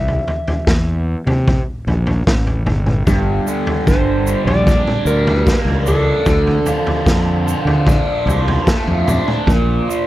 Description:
psychedelic rock; 75 BPM; 4/4; straight; G dorian; A4 = 440 Hz
electric slide guitar; melody; 0.0-7.4 s; A4 to E5; -20 LUFS; equal; slapback echo
fuzz fingered electric bass; bass; 0.0-9.8 s; G1 to D3; -18 LUFS; equal; overdrive
raw garage drum kit; drums; 0.1-9.7 s; kick drum, snare drum, toms; -18 LUFS; equal
cranked stack guitar; riff; 3.1-10.1 s; G2 to D4; -19 LUFS; right 1 dB; overdrive, phaser
egg shaker; percussion; 3.1-10.1 s; -34 LUFS; right 11 dB
little or no reverb; dry, close 1970s-style studio recording; -13 LUFS; side -15 dB against mid
0.0-10.1 A section
0.0 C; 3.1 Gm; 6.3 Dm; 9.5 Bb5

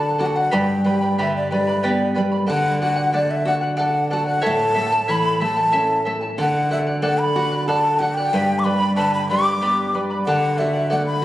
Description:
andean folk, Andean ensemble; 62 BPM (dotted quarters); 6/8; straight; A4 = 441 Hz
breathy large quena; melody; 0.0-11.2 s; D5 to D6; -21 LUFS; equal
charango; accompaniment; 0.0-11.2 s; E4 to B5; -23 LUFS; left 1 dB
nylon-string guitar; accompaniment; 0.0-11.2 s; G2 to A4; -22 LUFS; right 1 dB
wet concert hall reverb, RT60 2.2 s; recorded on a phone in the room, studio ambience, compression; -17 LUFS; side -14 dB against mid
0.0-11.2 A section
0.0 D; 0.5 G; 2.5 D; 4.4 A; 6.4 D; 8.3 G; 10.3 D

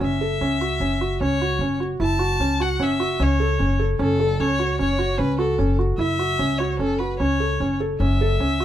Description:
contemporary instrumental, chamber music in an uneven meter; 150 BPM; 5/4; straight; F# minor; A4 = 438 Hz
rich violin; melody; 0.0-8.6 s; A4 to A5; -25 LUFS; left 1 dB
felt-muted upright piano; arpeggios; 0.0-8.6 s; C#4 to A4; -23 LUFS; equal
upright bass; bass; 0.0-8.6 s; F#1 to C#2; -24 LUFS; equal
little or no reverb; close, detailed microphones; -19 LUFS; side -11 dB against mid
0.0-8.6 A section
0.0 F#m7

